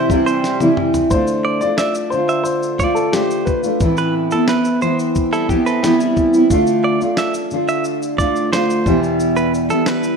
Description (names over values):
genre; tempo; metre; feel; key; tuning
acoustic pop; 89 BPM; 4/4; straight; unclear; A4 = 440 Hz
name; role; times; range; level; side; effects
warm upright piano; melody; 0.0-4.1 s; G4 to E5; -21 LUFS; left 4 dB; none
fingerpicked steel-string acoustic guitar; accompaniment; 0.0-10.2 s; E2 to F4; -16 LUFS; equal; double-tracked left and right
direct-recorded clean electric guitar; arpeggios; 0.0-10.2 s; A4 to E5; -22 LUFS; right 5 dB; none
dusty soul sampler-style drum kit; drums; 0.1-10.2 s; kick drum, shaker, snare drum, toms; -23 LUFS; equal; none
direct-recorded clean electric guitar; second line; 5.3-6.5 s; G3 to A4; -27 LUFS; left 3 dB; analog chorus
room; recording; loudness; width
light reverb; rough home demo mix; -14 LUFS; side -5 dB against mid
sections
0.0-1.1 A section; 1.1-10.2 B section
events
drum fill 0.4-1.1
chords
0.0 C; 1.1 Dm; 3.8 Amadd9; 6.5 Dm; 8.9 Em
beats
0.44 | 1.11 1.78 2.46 3.13 | 3.80 4.48 5.15 5.83 | 6.50 7.17 7.84 8.52 | 9.19 9.87